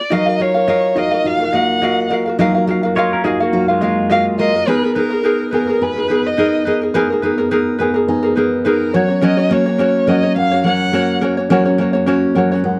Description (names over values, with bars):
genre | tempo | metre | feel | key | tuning
pop | 105 BPM | 4/4 | swing 55% on 16ths | Eb minor | A4 = 439 Hz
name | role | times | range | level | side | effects
dark violin | melody | 0.0-11.2 s | Bb4 to Gb5 | -20 LUFS | equal | none
ukulele | accompaniment | 0.0-12.8 s | Db4 to F5 | -20 LUFS | equal | none
dark upright piano | accompaniment | 0.1-12.8 s | Gb3 to Bb5 | -24 LUFS | equal | none
picked steel-string acoustic guitar | arpeggios | 0.1-12.8 s | Gb3 to Bb4 | -21 LUFS | equal | none
pedal steel guitar | second line | 3.0-4.5 s | Ab3 to Db5 | -22 LUFS | equal | none
room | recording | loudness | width
light reverb | dry, close 1970s-style studio recording | -16 LUFS | mono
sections
0.1-12.8 A section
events
none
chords
0.1 Ebmadd9; 4.7 Abmadd9; 8.9 Gb